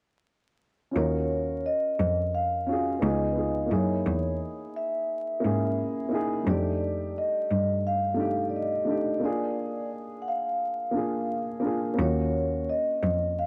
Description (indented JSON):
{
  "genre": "lo-fi hip hop",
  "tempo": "87 BPM",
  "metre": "4/4",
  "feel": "swing 56% on 16ths",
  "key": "unclear",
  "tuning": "A4 = 440 Hz",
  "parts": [
    { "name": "dark upright piano", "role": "accompaniment", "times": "0.9-13.5 s", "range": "G3 to Bb4", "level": "-32 LUFS", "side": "equal", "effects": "low-pass filter" },
    { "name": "vibraphone with soft mallets", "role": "melody", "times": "1.0-13.5 s", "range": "Db5 to Gb5", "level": "-32 LUFS", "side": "equal", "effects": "low-pass filter" },
    { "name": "clear cello", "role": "bass", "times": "1.0-13.5 s", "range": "Db2 to Ab2", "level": "-31 LUFS", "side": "equal", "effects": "transformer saturation" }
  ],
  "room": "light reverb, small room ambience",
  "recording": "worn, warbling old tape, cassette tape, vinyl crackle, warbly pitch drift",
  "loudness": "-28 LUFS",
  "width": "mono",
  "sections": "0.9-13.5 A section",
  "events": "break 9.2-12.0",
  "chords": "0.9 Ebm9; 3.0 Db7; 3.7 Gb13 (rootless); 6.5 F13; 9.2 Bb7; 12.0 Ebm9",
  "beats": "| 0.95 1.64 2.33 3.02 | 3.70 4.39 5.08 5.77 | 6.46 7.15 7.84 8.53 | 9.22 9.91 10.60 11.29 | 11.98 12.67 13.36"
}